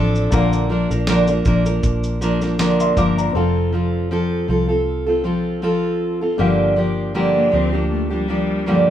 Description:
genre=acoustic pop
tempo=79 BPM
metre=4/4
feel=swing 55% on 16ths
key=F major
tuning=A4 = 438 Hz
part: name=fingerpicked steel-string acoustic guitar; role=accompaniment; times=0.0-8.9 s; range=G2 to Bb4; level=-17 LUFS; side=equal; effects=none
part: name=warm upright piano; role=accompaniment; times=0.0-8.9 s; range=Bb3 to D6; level=-28 LUFS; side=left 6 dB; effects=none
part: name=vintage muted fingered electric bass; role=bass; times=0.0-8.9 s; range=F1 to D2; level=-23 LUFS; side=equal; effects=none
part: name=dusty soul sampler-style drum kit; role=drums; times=0.2-3.3 s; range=kick drum, shaker, snare drum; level=-23 LUFS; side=equal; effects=none
part: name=warm cello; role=second line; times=7.4-8.9 s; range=G3 to C4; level=-23 LUFS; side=left 4 dB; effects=none
room=wet studio ambience, RT60 0.5 s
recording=heard from further back in the room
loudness=-16 LUFS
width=side -10 dB against mid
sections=0.0-3.4 A section; 3.4-8.9 B section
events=none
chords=0.3 Bb; 3.4 F; 6.4 Gm7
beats=| 0.33 1.08 1.84 2.60 | 3.36 4.12 4.87 5.63 | 6.39 7.16 7.92 8.68

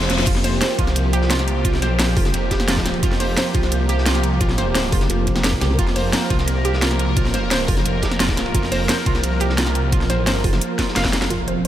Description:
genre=dark technical drum and bass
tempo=174 BPM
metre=4/4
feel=straight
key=unclear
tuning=A4 = 442 Hz
part: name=sweeping resonant pad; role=sustained chords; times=0.0-11.7 s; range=F3 to C5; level=-24 LUFS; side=right 2 dB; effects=chorus, sidechain pumping
part: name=snarling distorted saw bass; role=bass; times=0.0-11.7 s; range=F1 to C2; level=-22 LUFS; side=equal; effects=distortion, overdrive, sidechain pumping
part: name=crunchy breakbeat drum kit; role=drums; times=0.0-11.3 s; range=hi-hat, ride cymbal, snare drum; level=-31 LUFS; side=equal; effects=none
part: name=reverse cymbal and impact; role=sound effects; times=0.0-0.3, 11.3-11.7 s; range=none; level=-31 LUFS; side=left 2 dB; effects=none
part: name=drum and bass drum kit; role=drums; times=0.1-11.7 s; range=crash cymbal, hi-hat, snare drum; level=-23 LUFS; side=equal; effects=overdrive
part: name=analog pluck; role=arpeggios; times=0.3-11.7 s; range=F4 to F5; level=-26 LUFS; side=right 2 dB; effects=chorus, sidechain pumping, ping-pong delay
part: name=electronic kick drum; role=drums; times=0.3-11.1 s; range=none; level=-22 LUFS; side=equal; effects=overdrive
part: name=vowel-sweep wobble bass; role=bass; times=2.2-2.3, 4.9-7.8, 10.4-10.6 s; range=F1 to C2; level=-20 LUFS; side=equal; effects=chorus
room=moderate cathedral reverb, RT60 5.5 s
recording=dreamy mix soaked in reverb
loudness=-16 LUFS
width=side -12 dB against mid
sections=0.0-11.3 A section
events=break 0.0; drop 0.0-11.3; reverse cymbal 0.0; drum fill 0.1, 10.8-11.3; impact 11.3-11.7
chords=0.0 F5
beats=| 0.27 0.61 0.96 1.30 | 1.65 1.99 2.34 2.68 | 3.03 3.37 3.72 4.06 | 4.41 4.75 5.10 5.44 | 5.79 6.13 6.48 6.82 | 7.17 7.51 7.86 8.20 | 8.55 8.89 9.24 9.58 | 9.93 10.27 10.62 10.96 | 11.30 11.65

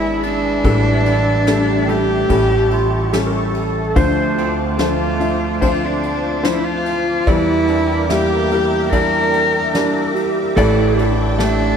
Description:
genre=acoustic folk-pop ballad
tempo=73 BPM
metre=4/4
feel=straight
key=D minor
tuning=A4 = 435 Hz
part: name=warm cello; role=melody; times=0.0-11.8 s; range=D4 to Bb4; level=-19 LUFS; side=equal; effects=ping-pong delay
part: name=felt-muted upright piano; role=accompaniment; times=0.0-11.8 s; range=G#1 to E5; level=-20 LUFS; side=left 4 dB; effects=none
part: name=lush unison pad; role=sustained chords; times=0.0-11.8 s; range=F4 to D6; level=-25 LUFS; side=right 1 dB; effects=chorus, phaser
part: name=electric guitar through a small old amp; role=arpeggios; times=0.0-11.8 s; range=E3 to D4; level=-24 LUFS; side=right 7 dB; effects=tremolo, ping-pong delay
part: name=upright bass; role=bass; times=0.0-11.8 s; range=G#1 to E2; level=-22 LUFS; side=equal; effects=none
part: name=soft brush drum kit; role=drums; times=0.2-11.6 s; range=kick drum, ride cymbal, snare drum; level=-25 LUFS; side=equal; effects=none
part: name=breathy clarinet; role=second line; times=2.7-4.6, 9.7-11.1 s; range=D4 to C5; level=-22 LUFS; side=right 5 dB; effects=none
room=moderate plate reverb, RT60 2.1 s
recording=dreamy mix soaked in reverb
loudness=-14 LUFS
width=side -7 dB against mid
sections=0.0-11.8 A section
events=none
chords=0.0 E7/G#; 0.6 A7sus4; 2.3 A7; 4.0 Dm7; 7.3 Em7b5; 10.6 A7sus4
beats=| 0.65 1.48 2.31 3.14 | 3.97 4.80 5.63 6.45 | 7.28 8.11 8.93 9.75 | 10.57 11.39

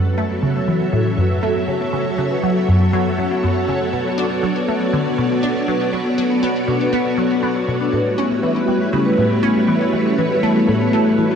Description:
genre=ambient, sequencer-driven space music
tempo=120 BPM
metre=4/4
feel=straight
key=B minor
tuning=A4 = 440 Hz
part: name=string machine, full ensemble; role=sustained chords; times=0.0-11.4 s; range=F#3 to E5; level=-18 LUFS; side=equal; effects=ensemble chorus
part: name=resonant blip pluck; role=riff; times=0.0-11.3 s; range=F#2 to D4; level=-20 LUFS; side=equal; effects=phaser, wide subtle chorus, ping-pong delay
part: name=vibraphone with soft mallets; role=arpeggios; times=0.1-11.4 s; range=B3 to B4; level=-23 LUFS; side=moving between left 6 dB and equal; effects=auto-pan, ping-pong delay
room=wet lush hall reverb, RT60 2.8 s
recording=dark, warm production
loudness=-16 LUFS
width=side -7 dB against mid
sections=0.0-11.4 A section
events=fade-in on vibraphone 0.0-11.4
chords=0.0 F#m7; 3.9 Bm7; 7.9 A13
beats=0.43 0.93 1.43 | 1.93 2.43 2.93 3.43 | 3.93 4.43 4.93 5.43 | 5.93 6.43 6.93 7.43 | 7.93 8.43 8.93 9.43 | 9.93 10.43 10.93

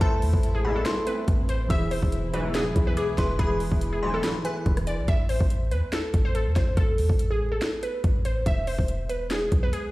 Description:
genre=hip hop, trap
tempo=142 BPM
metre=4/4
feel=half-time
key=A harmonic minor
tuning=A4 = 440 Hz
part: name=glassy wavetable pluck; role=melody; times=0.0-9.9 s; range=G#4 to E5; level=-29 LUFS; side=equal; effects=chorus, low-pass filter, ping-pong delay
part: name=delicate synth tine bell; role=second line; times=0.0-4.6 s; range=G#5 to E6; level=-36 LUFS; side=left 1 dB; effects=chorus, ping-pong delay
part: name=warbly lo-fi synth keys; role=accompaniment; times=0.0-5.1 s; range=E3 to C5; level=-32 LUFS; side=right 2 dB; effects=chorus, low-pass filter
part: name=dark studio string section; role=sustained chords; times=0.0-5.0 s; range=B2 to E4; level=-38 LUFS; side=left 2 dB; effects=none
part: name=clean 808-style bass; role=bass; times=0.0-9.7 s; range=E1 to E2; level=-26 LUFS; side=equal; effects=none
part: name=trap drum kit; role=drums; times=0.0-9.8 s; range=hi-hat, kick drum, rim click, snare drum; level=-26 LUFS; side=equal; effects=none
part: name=sync-sweep polysynth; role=stabs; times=0.6-4.3 s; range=B1 to E3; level=-36 LUFS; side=left 2 dB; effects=chorus, ping-pong delay
room=digital ambience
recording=played on a big sound system in a bare room, stone room reverb, vinyl crackle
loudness=-22 LUFS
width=side -18 dB against mid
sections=0.0-5.1 A section; 5.1-9.9 B section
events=none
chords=0.0 Amadd9; 1.7 E; 5.1 Amadd9; 8.5 E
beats=| 0.01 0.43 0.86 1.28 | 1.70 2.12 2.55 2.97 | 3.39 3.81 4.24 4.66 | 5.08 5.50 5.93 6.35 | 6.77 7.19 7.62 8.04 | 8.46 8.88 9.31 9.73

